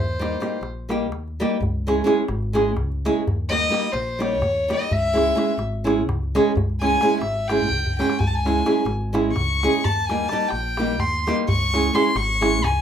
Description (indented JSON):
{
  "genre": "balkan folk, Balkan wedding band",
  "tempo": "255 BPM (eighths)",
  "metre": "7/8",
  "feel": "straight",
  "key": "C# hungarian minor",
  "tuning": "A4 = 440 Hz",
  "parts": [
    { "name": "rich violin", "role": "second line", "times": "0.0-0.6, 3.5-12.8 s", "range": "B#4 to C#6", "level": "-23 LUFS", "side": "left 2 dB", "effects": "none" },
    { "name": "upright bass", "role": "bass", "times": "0.0-12.8 s", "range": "G#1 to D#2", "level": "-27 LUFS", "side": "left 1 dB", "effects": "none" },
    { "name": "darbuka", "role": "percussion", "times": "0.1-12.8 s", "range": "none", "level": "-28 LUFS", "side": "equal", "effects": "none" },
    { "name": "nylon-string guitar", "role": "accompaniment", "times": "0.2-12.6 s", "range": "G3 to G#4", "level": "-21 LUFS", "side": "right 2 dB", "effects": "none" }
  ],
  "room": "moderate studio reverb, RT60 0.5 s",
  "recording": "rough home demo mix",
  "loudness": "-19 LUFS",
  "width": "side -9 dB against mid",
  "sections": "0.0-12.8 A section",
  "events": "violin solo 0.0-12.8; drum fill 7.6-8.2",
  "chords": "0.0 D#; 1.6 C#m; 3.3 D#; 4.9 C#m; 9.9 D#; 11.5 C#m",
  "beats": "0.19 0.43 0.67 0.90 1.14 1.38 | 1.61 1.85 2.08 2.32 2.56 2.79 3.03 | 3.27 3.50 3.74 3.97 4.21 4.45 4.68 | 4.92 5.15 5.39 5.62 5.86 6.09 6.33 | 6.57 6.80 7.04 7.27 7.50 7.74 7.97 | 8.21 8.45 8.68 8.91 9.15 9.38 9.62 | 9.85 10.09 10.32 10.56 10.79 11.03 11.26 | 11.49 11.73 11.96 12.20 12.43 12.66"
}